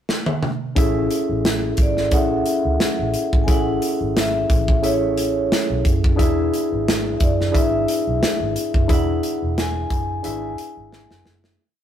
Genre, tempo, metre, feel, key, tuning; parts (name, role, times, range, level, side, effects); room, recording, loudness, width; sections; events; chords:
lush 1970s-style soul; 89 BPM; 4/4; swing 54% on 16ths; A major; A4 = 441 Hz
modern studio drum kit; drums; 0.1-11.6 s; hi-hat, kick drum, snare drum, toms; -20 LUFS; equal
tine electric piano; accompaniment; 0.8-11.6 s; C#4 to F#5; -22 LUFS; left 1 dB; medium stereo tremolo
vintage muted fingered electric bass; bass; 0.8-11.5 s; E1 to C#2; -26 LUFS; right 1 dB
vibraphone with medium mallets; melody; 1.8-11.2 s; C#5 to G#5; -25 LUFS; equal
light reverb; rough rehearsal-room recording, warm saturation; -17 LUFS; side -10 dB against mid
0.0-0.8 pickup bar; 0.8-11.6 verse
drum fill 0.1-0.8, 10.9-11.6; fade-out 8.9-11.6
0.0 N.C.; 0.8 Amaj7; 6.2 E7